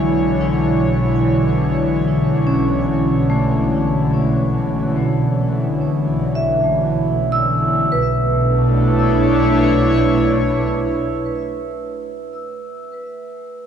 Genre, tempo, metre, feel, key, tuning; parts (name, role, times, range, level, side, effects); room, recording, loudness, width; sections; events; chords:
ambient; free time; B dorian; A4 = 439 Hz
airy breathy pad; sustained chords; 0.0-12.6 s; B2 to C#5; -17 LUFS; equal; chorus
vibraphone with medium hard mallets; arpeggios; 0.0-13.7 s; A3 to E6; -21 LUFS; equal; ping-pong delay
warm studio double bass section; bass; 0.0-11.2 s; B1; -24 LUFS; equal
wet plate reverb, RT60 2.6 s; dreamy mix soaked in reverb, cassette tape; -15 LUFS; side -8 dB against mid
0.0-7.9 A section; 7.9-12.4 B section
0.0 Bm11